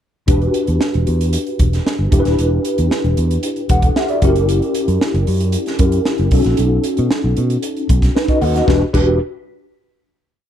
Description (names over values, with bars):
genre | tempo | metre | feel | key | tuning
polished 1980s jazz-funk pop | 114 BPM | 4/4 | straight | E dorian | A4 = 439 Hz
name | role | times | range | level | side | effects
mellow tine electric piano | accompaniment | 0.3-9.2 s | C#4 to F#5 | -18 LUFS | left 1 dB | medium stereo tremolo, ensemble chorus
fingered electric bass | bass | 0.3-9.2 s | D#1 to B2 | -17 LUFS | equal | none
crisp fusion drum kit | drums | 0.3-9.1 s | crash cymbal, hi-hat, kick drum, snare drum | -18 LUFS | right 1 dB | none
room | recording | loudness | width
small room ambience | none | -14 LUFS | side -10 dB against mid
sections
0.3-8.7 verse; 8.7-10.5 final chord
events
none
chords
0.3 Em9; 2.1 Gmaj13; 4.2 F#7b9; 6.3 B7; 8.7 Em9